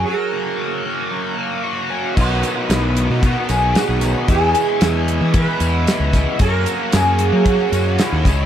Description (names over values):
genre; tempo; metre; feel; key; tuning
psychedelic rock; 114 BPM; 4/4; straight; unclear; A4 = 437 Hz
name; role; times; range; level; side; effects
sitar; melody; 0.0-8.5 s; E4 to B4; -21 LUFS; right 2 dB; analog delay
combo organ; sustained chords; 0.0-8.5 s; F#4 to G#5; -30 LUFS; right 4 dB; none
overdriven electric guitar; riff; 0.0-8.5 s; B2 to F#4; -22 LUFS; left 1 dB; flanger
fuzz fingered electric bass; bass; 0.0-8.5 s; B1 to F#3; -19 LUFS; equal; overdrive
damped 70s drum kit; drums; 2.2-8.4 s; crash cymbal, hi-hat, kick drum, snare drum; -19 LUFS; equal; none
tambourine; percussion; 2.2-8.4 s; none; -37 LUFS; left 11 dB; none
room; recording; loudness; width
small room ambience; none; -15 LUFS; side -10 dB against mid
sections
0.0-2.2 A section; 2.2-8.5 B section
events
break 0.1-2.2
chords
0.0 F#; 2.2 Badd9; 4.3 E6; 6.4 F#add9